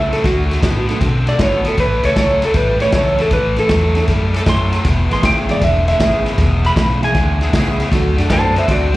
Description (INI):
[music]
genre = electric blues shuffle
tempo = 157 BPM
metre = 4/4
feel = swing 67% on 8ths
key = A major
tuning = A4 = 440 Hz
[part]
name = clean lap steel guitar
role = melody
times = 0.0-8.9 s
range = F#4 to C6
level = -18 LUFS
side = equal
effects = slapback echo
[part]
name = cranked stack guitar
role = riff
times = 0.0-9.0 s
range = E2 to C4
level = -22 LUFS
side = left 3 dB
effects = overdrive, slapback echo
[part]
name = bright horn section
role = stabs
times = 0.0-8.6 s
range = B3 to A4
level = -27 LUFS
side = right 1 dB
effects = slapback echo
[part]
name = vintage muted fingered electric bass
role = bass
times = 0.0-9.0 s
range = E1 to B2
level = -18 LUFS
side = equal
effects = none
[part]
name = crunchy breakbeat drum kit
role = drums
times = 0.1-9.0 s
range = kick drum, ride cymbal, snare drum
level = -18 LUFS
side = equal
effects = none
[part]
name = mellow reed electric piano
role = accompaniment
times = 0.9-9.0 s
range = E3 to A4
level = -24 LUFS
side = right 4 dB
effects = phaser, slapback echo
[sound]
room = light reverb, small room reverb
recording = live gig heard through the venue's PA, club reverb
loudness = -13 LUFS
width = side -17 dB against mid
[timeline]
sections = 0.0-9.0 A section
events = electric slide guitar solo 0.0-9.0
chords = 0.3 D; 1.8 A; 4.8 E; 7.9 D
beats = | 0.25 0.63 1.02 1.40 | 1.78 2.17 2.55 2.93 | 3.32 3.70 4.08 4.46 | 4.85 5.23 5.61 6.00 | 6.38 6.76 7.14 7.53 | 7.91 8.29 8.68